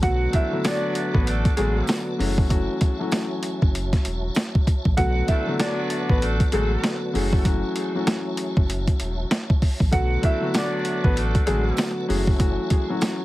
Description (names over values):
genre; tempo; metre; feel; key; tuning
hip hop, boom-bap hip-hop; 97 BPM; 4/4; swing 61% on 16ths; B minor; A4 = 439 Hz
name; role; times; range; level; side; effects
bright upright piano; melody; 0.0-11.6 s; G#3 to F#5; -28 LUFS; equal; high-pass filter, low-pass filter, digital delay
dark grand piano; accompaniment; 0.0-13.2 s; D3 to F#4; -27 LUFS; left 2 dB; high-pass filter, low-pass filter
tonewheel organ; sustained chords; 0.0-13.2 s; F#4 to A5; -37 LUFS; right 1 dB; chorus vibrato, fast rotary speaker, high-pass filter, low-pass filter
warm sub bass; bass; 0.0-12.6 s; E1 to B1; -25 LUFS; equal; none
boom bap sampler-style drum kit; drums; 0.0-13.2 s; hi-hat, kick drum, snare drum; -21 LUFS; equal; none
clear horn section; stabs; 0.3-11.9 s; F#3 to A4; -33 LUFS; right 1 dB; high-pass filter, low-pass filter, digital delay
tambourine; percussion; 0.6-4.5, 10.5-13.2 s; none; -41 LUFS; right 6 dB; none
room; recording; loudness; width
little or no reverb; heavily compressed radio sound, vinyl crackle; -20 LUFS; side -17 dB against mid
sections
0.0-5.0 A section; 5.0-13.2 A section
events
none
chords
0.0 Bm7; 2.2 F#m7; 5.0 Bm7; 7.1 F#m7; 9.9 Bm7; 12.1 F#m7